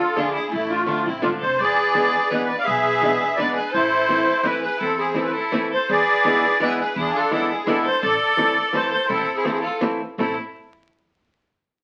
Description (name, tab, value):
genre	musette waltz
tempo	168 BPM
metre	3/4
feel	straight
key	A harmonic minor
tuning	A4 = 440 Hz
part	musette accordion	melody	0.0-10.4 s	A3 to F5	-22 LUFS	equal	none
part	bright violin	second line	0.0-10.4 s	A3 to D5	-30 LUFS	equal	none
part	archtop guitar, miked and amplified	accompaniment	0.2-10.4 s	D3 to A4	-27 LUFS	equal	none
part	upright bass	bass	0.5-10.4 s	F1 to E2	-37 LUFS	equal	none
room	wet studio reverb, RT60 0.8 s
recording	very old 78 rpm record, vinyl crackle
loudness	-21 LUFS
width	mono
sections	0.0-5.9 A section; 5.9-10.2 B section; 10.2-11.2 C section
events	none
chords	0.0 Dm; 1.6 E7; 3.7 Am; 5.9 E7; 8.0 Am